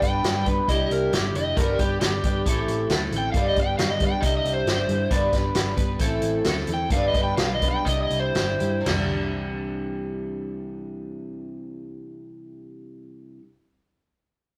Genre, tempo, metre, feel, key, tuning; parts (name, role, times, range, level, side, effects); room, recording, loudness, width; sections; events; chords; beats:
folk rock and heartland rock; 115-136 BPM; 4/4; straight; C major; A4 = 440 Hz
overdriven slide guitar; melody; 0.0-8.9 s; G4 to G5; -29 LUFS; equal
picked twelve-string acoustic guitar; accompaniment; 0.0-13.5 s; G2 to B4; -30 LUFS; equal
hollow-body short-scale picked electric bass; bass; 0.0-13.4 s; F1 to G2; -32 LUFS; equal
vintage drum kit; drums; 0.0-9.0 s; crash cymbal, hi-hat, kick drum, snare drum, toms; -28 LUFS; equal
light reverb; rough rehearsal-room recording, tube saturation; -24 LUFS; mono
0.0-8.9 A section; 8.9-13.0 B section
electric slide guitar solo 0.0-8.9; slowing down 5.1-8.9
0.0 G; 0.7 Cadd9; 1.6 G; 2.5 Am; 3.3 G; 4.2 Cadd9; 5.1 G; 6.0 Am; 6.9 G; 7.9 Cadd9
0.24 0.69 1.13 | 1.57 2.02 2.46 2.90 | 3.34 3.78 4.23 4.67 | 5.11 5.55 6.00 6.45 | 6.91 7.38 7.86 8.36 | 8.87 9.39 9.91 10.43 | 10.95 11.47 11.99 12.51